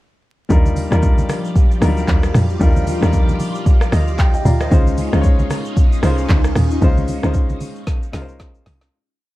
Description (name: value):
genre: amapiano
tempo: 114 BPM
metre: 4/4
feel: swing 58% on 16ths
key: Eb major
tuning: A4 = 440 Hz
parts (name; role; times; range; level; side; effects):
- warm baby grand piano; accompaniment; 0.5-8.9 s; Gb3 to Bb5; -22 LUFS; left 2 dB; none
- phased string machine; sustained chords; 0.5-8.9 s; F3 to D5; -27 LUFS; equal; ensemble chorus, phaser, sidechain pumping
- tight log drum bass; bass; 0.5-8.9 s; C2 to F2; -18 LUFS; equal; none
- afro-pop drum kit; drums; 0.5-8.9 s; handclaps, hi-hat, kick drum, rim click, shaker, snare drum, toms; -16 LUFS; equal; none
- congas; percussion; 0.5-8.8 s; none; -26 LUFS; right 2 dB; none
room: little or no reverb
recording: dark, warm production, vinyl crackle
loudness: -14 LUFS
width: side -17 dB against mid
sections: 0.5-8.9 drop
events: drop 0.5-8.9; grand piano fill 3.7-4.7; fade-out 6.8-8.9; drum fill 7.9-8.9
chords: 0.5 Ebmaj9; 4.7 Dbmaj9